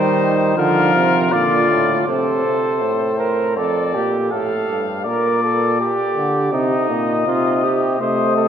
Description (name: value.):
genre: classical, imitative canzona for brass ensemble.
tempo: 81 BPM.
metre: 4/4.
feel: straight.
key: unclear.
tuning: A4 = 440 Hz.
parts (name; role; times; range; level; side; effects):
mellow trumpet; melody; 0.0-8.5 s; Bb4 to F5; -20 LUFS; left 6 dB; none.
clear flugelhorn; second line; 0.0-8.5 s; Eb4 to C5; -20 LUFS; right 3 dB; none.
warm trombone; accompaniment; 0.0-2.1, 8.0-8.5 s; D3 to A3; -23 LUFS; right 3 dB; none.
warm euphonium; bass; 0.0-8.5 s; F2 to Eb3; -21 LUFS; right 1 dB; none.
room: wet church reverb, RT60 2.9 s.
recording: worn, warbling old tape, cassette tape, warbly pitch drift.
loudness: -15 LUFS.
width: side -8 dB against mid.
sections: 0.0-2.1 A section; 2.1-8.5 B section.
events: none.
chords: 0.0 Eb; 0.6 Bb; 2.1 Am; 3.6 Dm/F; 5.1 Gm/Bb; 6.5 Cm.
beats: 0.57 1.32 | 2.07 2.83 3.58 4.32 | 5.06 5.80 6.53 7.26 | 8.00.